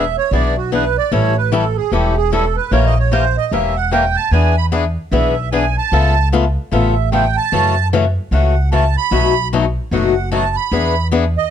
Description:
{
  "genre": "acoustic string swing (jazz manouche)",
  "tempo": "150 BPM",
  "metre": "4/4",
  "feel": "swing 63% on 8ths",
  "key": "E mixolydian",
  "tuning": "A4 = 438 Hz",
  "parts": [
    { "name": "accordion", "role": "second line", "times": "0.0-11.5 s", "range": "F#4 to B5", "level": "-18 LUFS", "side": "right 9 dB", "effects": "light tremolo tuning" },
    { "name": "picked swing-style acoustic guitar", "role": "accompaniment", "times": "0.0-11.2 s", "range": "B2 to A#4", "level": "-18 LUFS", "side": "left 7 dB", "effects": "none" },
    { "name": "upright bass", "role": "bass", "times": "0.0-11.4 s", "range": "E1 to F#2", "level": "-17 LUFS", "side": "equal", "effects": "none" }
  ],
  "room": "light reverb",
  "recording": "dark, warm production",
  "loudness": "-13 LUFS",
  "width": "side -9 dB against mid",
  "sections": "0.0-11.5 A section",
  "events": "accordion solo 0.0-11.5",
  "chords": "0.0 E7; 1.1 A7; 2.7 A#dim7; 4.3 E7; 5.9 C#7alt; 7.5 F#m7; 9.1 B7; 10.7 E7"
}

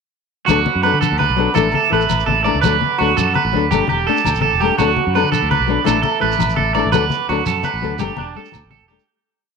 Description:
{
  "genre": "highlife guitar band",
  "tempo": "112 BPM (dotted quarters)",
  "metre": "12/8",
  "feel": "straight",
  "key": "D major",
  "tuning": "A4 = 440 Hz",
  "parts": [
    { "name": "nylon-string guitar", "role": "accompaniment", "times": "0.5-9.0 s", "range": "E3 to A4", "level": "-21 LUFS", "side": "left 10 dB", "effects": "none" },
    { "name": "mellow tonewheel organ", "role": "sustained chords", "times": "0.5-9.1 s", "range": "E5 to D6", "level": "-28 LUFS", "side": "equal", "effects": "slow rotary speaker" },
    { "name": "electric guitar at the edge of break-up", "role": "arpeggios", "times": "0.5-9.1 s", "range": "D4 to D5", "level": "-18 LUFS", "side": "right 10 dB", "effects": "spring reverb, slapback echo" },
    { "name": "fingered electric bass", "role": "bass", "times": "0.5-9.0 s", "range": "E1 to D3", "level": "-22 LUFS", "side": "equal", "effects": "none" },
    { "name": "agogo bells", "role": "percussion", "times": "0.5-9.1 s", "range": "none", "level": "-27 LUFS", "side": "left 12 dB", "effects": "none" },
    { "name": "congas", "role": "percussion", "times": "0.5-9.0 s", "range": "none", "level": "-25 LUFS", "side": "left 8 dB", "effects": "none" },
    { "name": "shekere", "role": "percussion", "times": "0.5-9.0 s", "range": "none", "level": "-26 LUFS", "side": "right 6 dB", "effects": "none" }
  ],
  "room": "moderate echo chamber reverb, RT60 1.6 s, studio reverb",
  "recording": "1960s-style stereo with parts hard left and right",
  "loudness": "-14 LUFS",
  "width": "side -5 dB against mid",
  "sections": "0.5-9.1 groove",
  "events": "fade-out 6.9-9.1",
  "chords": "0.5 D6; 1.6 Asus4; 2.6 D6; 3.7 Gsus2; 4.8 D6; 5.9 Asus4; 6.9 D6; 8.0 Gsus2"
}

